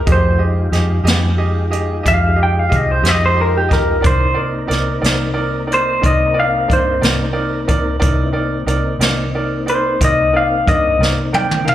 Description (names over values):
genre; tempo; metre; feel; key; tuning
slow blues; 60 BPM (dotted quarters); 12/8; straight; C minor; A4 = 440 Hz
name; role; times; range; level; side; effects
electric guitar through a small old amp; melody; 0.0-11.7 s; G4 to G5; -16 LUFS; left 1 dB; slapback echo
tonewheel organ; sustained chords; 0.0-11.7 s; Ab3 to Bb4; -26 LUFS; left 2 dB; slow rotary speaker, chorus vibrato
vintage muted fingered electric bass; bass; 0.0-11.7 s; C2 to G2; -19 LUFS; equal; none
bright upright piano; accompaniment; 0.1-11.7 s; Eb4 to F5; -22 LUFS; right 2 dB; slapback echo
jazz brush drum kit; drums; 0.1-11.7 s; hi-hat, kick drum, snare drum, toms; -18 LUFS; equal; none
room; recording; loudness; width
light reverb, small room ambience; live gig heard through the venue's PA, club reverb; -13 LUFS; side -12 dB against mid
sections
0.0-11.7 A section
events
clean electric guitar solo 0.0-11.7; drum fill 11.0-11.7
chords
0.0 Fm9; 4.0 Cm9